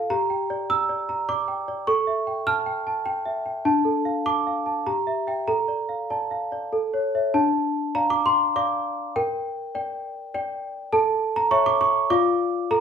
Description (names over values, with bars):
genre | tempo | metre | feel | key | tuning
classical, lullaby for celesta | 101 BPM | 3/4 | straight | D minor | A4 = 440 Hz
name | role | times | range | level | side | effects
worn celesta | solo | 0.0-12.8 s | D4 to F6 | -21 LUFS | right 1 dB | none
room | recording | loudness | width
wet large studio reverb, RT60 0.7 s | band playing live in one room | -21 LUFS | side -7 dB against mid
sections
0.0-7.3 A section; 7.3-12.8 B section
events
none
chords
0.1 Gm; 1.9 A7; 3.7 Dm; 4.9 Edim/G; 5.5 Dm/A; 6.7 A; 7.3 Dm; 9.2 Gm/Bb; 10.9 A; 12.1 Dm/F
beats
| 0.10 0.69 1.28 | 1.87 2.47 3.06 | 3.65 4.25 4.86 | 5.48 6.10 6.73 | 7.34 7.95 8.55 | 9.15 9.74 10.34 | 10.93 11.51 12.10 | 12.70